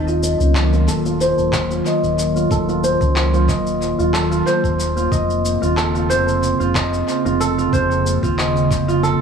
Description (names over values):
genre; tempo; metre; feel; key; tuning
organic downtempo; 92 BPM; 4/4; swing 54% on 16ths; unclear; A4 = 442 Hz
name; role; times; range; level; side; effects
warbly tape-like pad; sustained chords; 0.0-9.2 s; Db3 to F4; -21 LUFS; right 2 dB; chorus, built-in reverb, sidechain pumping
kora; arpeggios; 0.0-9.2 s; F4 to Eb5; -19 LUFS; equal; low-pass filter, analog delay
round analog bass; bass; 0.0-9.2 s; Eb1 to Db2; -21 LUFS; equal; sidechain pumping
electronic shaker and handclaps; drums; 0.1-9.2 s; none; -26 LUFS; left 1 dB; studio reverb, tape echo
electronic kick drum; drums; 1.5-8.8 s; none; -23 LUFS; equal; studio reverb
room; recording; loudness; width
moderate spring reverb, RT60 2.0 s; echo-heavy mix; -15 LUFS; side -6 dB against mid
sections
0.0-9.2 A section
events
filter sweep on kora 0.0-9.2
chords
0.0 Ebm7; 5.1 Bbmadd9